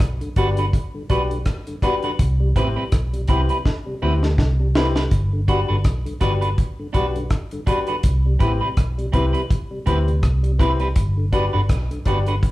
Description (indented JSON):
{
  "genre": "roots reggae",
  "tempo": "82 BPM",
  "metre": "4/4",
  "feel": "swing 57% on 16ths",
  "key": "G major",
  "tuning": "A4 = 440 Hz",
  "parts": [
    { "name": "vintage muted fingered electric bass", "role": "bass", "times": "0.0-12.4 s", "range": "G1 to D2", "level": "-21 LUFS", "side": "equal", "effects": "none" },
    { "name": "deep reggae drum kit", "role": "drums", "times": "0.0-12.5 s", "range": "hi-hat, kick drum, rim click, snare drum", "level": "-21 LUFS", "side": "equal", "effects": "none" },
    { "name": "tonewheel organ", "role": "accompaniment", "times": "0.2-12.4 s", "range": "G2 to F#4", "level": "-30 LUFS", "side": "left 1 dB", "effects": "overdrive, slow rotary speaker" },
    { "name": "electric guitar at the edge of break-up", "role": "accompaniment", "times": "0.4-12.3 s", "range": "C4 to B4", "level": "-26 LUFS", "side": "right 2 dB", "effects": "none" },
    { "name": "clear upright piano", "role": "stabs", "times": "0.4-12.3 s", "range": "C4 to B4", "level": "-27 LUFS", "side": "left 4 dB", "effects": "none" }
  ],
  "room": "moderate large studio reverb, RT60 1.0 s",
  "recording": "band playing live in one room, cassette tape",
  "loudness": "-18 LUFS",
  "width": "side -17 dB against mid",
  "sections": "0.0-12.5 A section",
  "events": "drum fill 3.7-5.1",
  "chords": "0.0 Gmaj7; 2.2 Cmaj7; 5.1 Gmaj7; 8.0 Cmaj7; 11.0 Gmaj7"
}